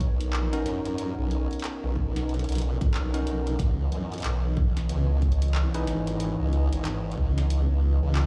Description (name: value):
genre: glitch hop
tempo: 92 BPM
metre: 4/4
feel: swing 61% on 16ths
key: C# dorian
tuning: A4 = 440 Hz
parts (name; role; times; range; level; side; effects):
- warm analog pad; sustained chords; 0.0-8.3 s; E3 to D#5; -38 LUFS; equal; chorus, sidechain pumping
- formant-sweep wobble bass; bass; 0.0-8.3 s; G#1 to F#2; -28 LUFS; equal; chorus, tube saturation
- electronic kick drum; drums; 0.0-7.3 s; none; -28 LUFS; equal; none
- pop drum kit; drums; 0.0-8.3 s; handclaps, hi-hat, snare drum; -39 LUFS; equal; none
- bell-like tine electric piano; stabs; 0.5-8.3 s; C#4 to B4; -36 LUFS; equal; sidechain pumping, digital delay
room: digital ambience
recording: played on a big sound system in a bare room, large studio reverb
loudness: -26 LUFS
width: mono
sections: 0.0-8.3 A section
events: kick drops out 7.5-8.3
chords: 0.0 Bmaj9; 3.6 C#m9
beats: 0.33 | 0.98 1.63 2.29 2.94 | 3.59 4.24 4.89 5.55 | 6.20 6.85 7.50 8.16